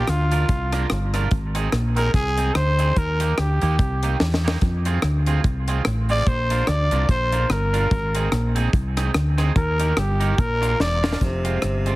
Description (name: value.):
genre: ska.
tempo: 146 BPM.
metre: 4/4.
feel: swing 58% on 8ths.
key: unclear.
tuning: A4 = 440 Hz.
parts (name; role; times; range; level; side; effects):
growling trumpet; melody; 0.0-11.2 s; F4 to D5; -24 LUFS; equal; none.
electric guitar at the edge of break-up; accompaniment; 0.0-12.0 s; Ab3 to Bb4; -29 LUFS; right 5 dB; dub echo.
fingered electric bass; bass; 0.0-12.0 s; E1 to F2; -21 LUFS; equal; none.
deep reggae drum kit; drums; 0.1-11.9 s; hi-hat, kick drum, rim click, snare drum; -23 LUFS; equal; none.
breathy tenor saxophone; melody; 11.2-12.0 s; C3; -26 LUFS; equal; dub echo.
room: studio ambience.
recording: heavily compressed radio sound, multiband compression.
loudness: -18 LUFS.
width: side -18 dB against mid.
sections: 0.0-11.2 A section.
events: trumpet solo 0.0-11.2; drum fill 4.2-4.6, 10.8-11.2.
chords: 0.0 Bb; 1.3 Ab; 3.0 Eb; 4.6 Fm; 6.3 Bb; 7.9 Ab; 9.6 Eb; 10.4 Bb; 11.2 Fm.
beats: 0.08 0.49 0.91 | 1.32 1.73 2.14 2.56 | 2.97 3.38 3.79 4.20 | 4.62 5.03 5.44 5.85 | 6.26 6.68 7.09 7.50 | 7.91 8.32 8.73 9.15 | 9.56 9.97 10.38 10.80 | 11.21 11.62.